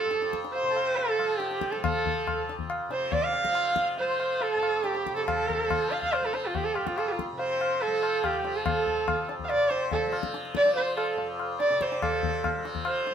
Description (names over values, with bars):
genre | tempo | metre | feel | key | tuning
indian classical, Hindustani | 141 BPM | 4/4 | straight | F raga bhupali | A4 = 442 Hz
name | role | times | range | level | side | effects
rich sarangi | melody | 0.0-13.1 s | F4 to F5 | -27 LUFS | right 2 dB | none
pedal harmonium | second line | 0.0-12.1 s | F4 to F5 | -35 LUFS | left 3 dB | none
tanpura | drone | 0.0-13.1 s | F2 to F3 | -35 LUFS | left 2 dB | none
tabla | percussion | 0.1-13.1 s | none | -32 LUFS | left 4 dB | none
room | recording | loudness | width
moderate studio reverb, RT60 0.7 s | band playing live in one room | -25 LUFS | side -8 dB against mid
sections
0.0-12.0 A section; 12.0-13.1 B section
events
speeding up 0.0-13.1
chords
none